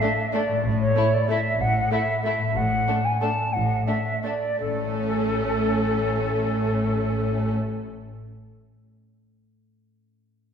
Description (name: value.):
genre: classical, orchestral ballroom waltz.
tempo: 159-201 BPM.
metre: 3/4.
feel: rubato.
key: A major.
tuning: A4 = 439 Hz.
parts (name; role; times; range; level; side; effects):
rich studio violin section; melody; 0.0-7.5 s; A4; -36 LUFS; left 4 dB; none.
rich studio violin section; second line; 0.0-7.5 s; C#4 to E4; -32 LUFS; left 2 dB; none.
silver concert flute; second line; 0.0-7.5 s; A4 to A5; -25 LUFS; right 1 dB; none.
rich studio viola section; accompaniment; 0.0-7.5 s; A3; -31 LUFS; right 3 dB; none.
concert harp; arpeggios; 0.0-8.5 s; A2 to C#5; -31 LUFS; left 6 dB; none.
clear studio cello section; bass; 0.7-7.5 s; A2; -30 LUFS; equal; none.
clear studio double bass section; bass; 0.7-7.5 s; A1; -30 LUFS; equal; none.
room: wet scoring stage reverb, RT60 1.8 s.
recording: recorded in a church or concert hall.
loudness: -21 LUFS.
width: side -7 dB against mid.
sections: 0.0-4.6 A section; 4.6-6.8 B section.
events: slowing down 2.1-4.6.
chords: 0.0 D5/A; 2.6 D/A; 4.6 A.